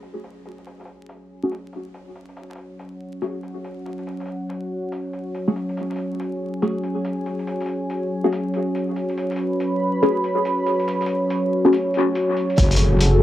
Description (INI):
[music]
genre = deep dubstep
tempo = 141 BPM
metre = 4/4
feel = swing 62% on 16ths, half-time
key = F# minor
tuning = A4 = 440 Hz
[part]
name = dark analog pad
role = sustained chords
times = 0.0-13.2 s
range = F#4 to B5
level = -23 LUFS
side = equal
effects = chorus
[part]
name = electronic hi-hat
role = drums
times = 0.0-13.1 s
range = none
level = -34 LUFS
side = left 1 dB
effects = low-pass filter on hats, low-pass filter on snare, low-pass filter on room
[part]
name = filtered dub chord stab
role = stabs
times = 1.4-11.8 s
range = A3 to G#4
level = -22 LUFS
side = left 1 dB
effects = phaser, lush chorus, dub echo
[part]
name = wobble bass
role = bass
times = 12.6-13.2 s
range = F#1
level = -17 LUFS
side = equal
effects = chorus, transformer saturation
[part]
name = electronic kick drum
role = drums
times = 12.6-12.7 s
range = none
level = -17 LUFS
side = equal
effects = none
[part]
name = impact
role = sound effects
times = 12.6-13.2 s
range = none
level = -25 LUFS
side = equal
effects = none
[sound]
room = little or no reverb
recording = dry, gritty hardware recording, vinyl crackle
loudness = -20 LUFS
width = side -13 dB against mid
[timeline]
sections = 0.0-12.6 A section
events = filter sweep on synth stab 0.0-12.6; filter sweep on analog synth pad 0.0-12.6; impact 12.6-13.2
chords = 0.0 F#sus2; 12.6 F#madd9